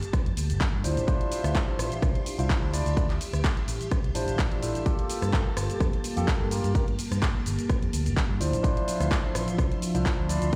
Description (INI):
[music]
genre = filtered disco house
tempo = 127 BPM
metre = 4/4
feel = swing 54% on 16ths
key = G dorian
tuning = A4 = 444 Hz
[part]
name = string machine, full ensemble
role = sustained chords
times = 0.0-10.6 s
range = F3 to C6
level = -38 LUFS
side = equal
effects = ensemble chorus, vintage 12-bit sampler grit, sidechain pumping
[part]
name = house drum kit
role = drums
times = 0.0-10.6 s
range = handclaps, hi-hat, rim click, shaker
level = -37 LUFS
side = equal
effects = overdrive, sidechain pumping on hats, sidechain pumping on cymbals, sidechain pumping on perc
[part]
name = electronic kick drum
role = drums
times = 0.1-10.6 s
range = none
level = -28 LUFS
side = equal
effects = overdrive
[part]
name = fingered electric bass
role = bass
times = 0.3-10.6 s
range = G1 to G2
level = -31 LUFS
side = equal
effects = sidechain pumping
[part]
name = barky tine electric piano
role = accompaniment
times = 0.8-10.6 s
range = Bb3 to D5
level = -34 LUFS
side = equal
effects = phaser, sidechain pumping
[sound]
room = digital ambience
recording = played on a big sound system in a bare room, stone room reverb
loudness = -27 LUFS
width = mono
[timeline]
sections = 0.0-10.6 A section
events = none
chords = 0.0 Gmadd9; 0.8 Dm9; 4.9 Gm9; 8.4 Dm9